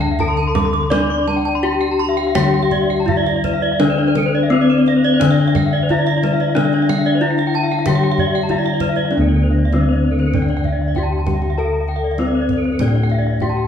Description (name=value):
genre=Balinese gamelan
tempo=83-98 BPM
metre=4/4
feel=straight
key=D slendro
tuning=A4 = 439 Hz
part: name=gamelan-type bronze metallophone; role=melody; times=0.0-13.7 s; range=C4-45c to D5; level=-20 LUFS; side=left 3 dB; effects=none
part: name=gamelan-type bronze metallophone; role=accompaniment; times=0.0-9.1 s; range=D3 to D4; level=-22 LUFS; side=left 3 dB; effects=none
part: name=gamelan-type bronze metallophone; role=arpeggios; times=0.0-13.7 s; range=A4+25c to D6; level=-23 LUFS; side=right 4 dB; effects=slapback echo
part: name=gamelan-type bossed gongs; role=bass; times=0.0-13.7 s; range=D2 to D5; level=-19 LUFS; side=left 1 dB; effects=none
part: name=gamelan-type bronze metallophone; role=arpeggios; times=0.1-13.6 s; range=C5-45c to D6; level=-24 LUFS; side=left 6 dB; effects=none
part: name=kendang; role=percussion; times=0.2-13.5 s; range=none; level=-25 LUFS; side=right 4 dB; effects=none
room=wet recital hall reverb, RT60 1.8 s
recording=studio ambience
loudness=-14 LUFS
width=side -8 dB against mid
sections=0.0-9.1 A section; 9.1-13.7 B section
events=none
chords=none